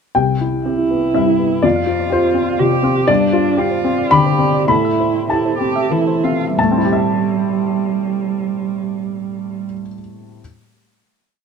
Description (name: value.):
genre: neoclassical piano and strings.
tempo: 90-125 BPM.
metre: 3/4.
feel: rubato.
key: A minor.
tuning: A4 = 442 Hz.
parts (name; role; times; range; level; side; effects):
warm upright piano; accompaniment; 0.1-10.4 s; C2 to B5; -17 LUFS; left 4 dB; none.
harp-like synth pluck; arpeggios; 0.2-6.5 s; C4 to F5; -22 LUFS; right 3 dB; chorus, slapback echo.
muted cello; second line; 0.6-9.6 s; G3 to G4; -19 LUFS; right 8 dB; none.
room: light reverb.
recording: none.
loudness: -14 LUFS.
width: side -6 dB against mid.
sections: 0.2-6.6 theme; 6.6-10.4 final chord.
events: slowing down 2.4-6.6.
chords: 0.2 Cmaj7; 1.6 Fsus2; 3.1 G7sus4; 4.7 Am7.